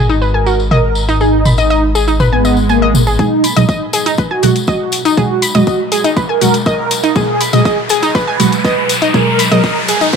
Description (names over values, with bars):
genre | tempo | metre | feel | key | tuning
melodic techno | 121 BPM | 4/4 | straight | G# minor | A4 = 440 Hz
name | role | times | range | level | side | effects
analog pluck | arpeggios | 0.0-10.2 s | D#4 to B5 | -16 LUFS | left 1 dB | chorus, sidechain pumping, dub echo
dark detuned saw bass | bass | 0.0-3.2 s | G#1 | -16 LUFS | left 1 dB | tube saturation, sidechain pumping
analog drone | drone | 0.1-3.2 s | G#2 to G#3 | -28 LUFS | right 1 dB | none
tambourine | percussion | 0.1-10.2 s | none | -23 LUFS | left 5 dB | none
mellow synth brass | melody | 0.3-9.8 s | A#3 to B4 | -17 LUFS | right 1 dB | chorus, sidechain pumping, digital delay
house drum kit | drums | 0.7-10.2 s | hi-hat, toms | -17 LUFS | equal | high-pass filter on toms, high-pass filter on hats
swell and riser | sound effects | 2.3-10.2 s | none | -21 LUFS | equal | none
synth brass stab | stabs | 3.2-9.6 s | B2 to G#3 | -16 LUFS | right 2 dB | chorus, phaser, sidechain pumping
electronic kick drum | drums | 3.2-10.2 s | none | -16 LUFS | equal | high-pass filter on kick
room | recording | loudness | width
light reverb | low-pass filter | -10 LUFS | side -6 dB against mid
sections
0.0-3.2 A section; 3.2-10.2 B section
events
swell 2.3-3.2; build-up 3.2-10.2; riser 3.2-10.2; filter sweep on synth stab 3.2-10.2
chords
0.0 G#m; 3.2 G#m7